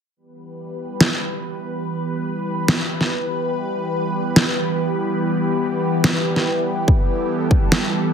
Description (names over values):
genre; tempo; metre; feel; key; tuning
heavy wobble dubstep; 143 BPM; 4/4; swing 54% on 16ths, half-time; E minor; A4 = 440 Hz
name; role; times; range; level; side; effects
lush unison pad; sustained chords; 0.2-8.1 s; E3 to B4; -21 LUFS; equal; chorus, phaser, sidechain pumping
electronic snare drum; drums; 1.0-7.8 s; none; -18 LUFS; equal; none
electronic kick drum; drums; 6.9-7.6 s; none; -16 LUFS; equal; none
room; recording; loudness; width
moderate digital room reverb, RT60 1.1 s; heavily compressed radio sound; -18 LUFS; side -7 dB against mid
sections
0.2-8.1 A section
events
none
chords
0.2 Em